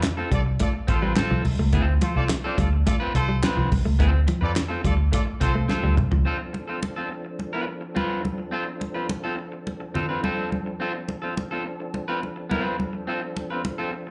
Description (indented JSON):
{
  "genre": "funk",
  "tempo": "106 BPM",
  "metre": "4/4",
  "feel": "straight",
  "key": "D dorian",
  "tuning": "A4 = 435 Hz",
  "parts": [
    { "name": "electric guitar at the edge of break-up", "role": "accompaniment", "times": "0.0-14.1 s", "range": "C4 to B4", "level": "-32 LUFS", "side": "equal", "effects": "none" },
    { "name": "cloth-damped thuddy drum kit", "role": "drums", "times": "0.0-6.2 s", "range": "handclaps, hi-hat, kick drum, snare drum, toms", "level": "-28 LUFS", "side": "equal", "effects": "none" },
    { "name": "congas", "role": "percussion", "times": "0.0-13.8 s", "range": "none", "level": "-33 LUFS", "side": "equal", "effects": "none" },
    { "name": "clear horn section", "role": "second line", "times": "0.3-5.6 s", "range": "F4 to F5", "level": "-34 LUFS", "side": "equal", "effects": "slapback echo" },
    { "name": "clean electric guitar", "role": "riff", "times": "0.3-6.2 s", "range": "F3 to A3", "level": "-32 LUFS", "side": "equal", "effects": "slapback echo" },
    { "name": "vintage muted fingered electric bass", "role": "bass", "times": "0.3-6.2 s", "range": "A1 to F2", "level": "-24 LUFS", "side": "equal", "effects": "none" },
    { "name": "percussive tonewheel organ", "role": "sustained chords", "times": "6.2-14.1 s", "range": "F3 to A4", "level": "-37 LUFS", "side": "equal", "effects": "chorus vibrato, slow rotary speaker" }
  ],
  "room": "small room ambience",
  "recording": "live gig heard through the venue's PA, club reverb, nothing above 10.6 kHz",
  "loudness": "-25 LUFS",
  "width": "mono",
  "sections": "0.0-6.3 A section; 6.3-14.1 B section",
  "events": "drum fill 5.7-6.3",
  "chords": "0.0 Dm7",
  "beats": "0.04 0.60 1.17 | 1.73 2.30 2.87 3.43 | 4.00 4.56 5.13 5.70 | 6.26 6.83 7.40 7.96 | 8.53 9.10 9.67 10.24 | 10.80 11.37 11.94 12.51 | 13.08 13.64"
}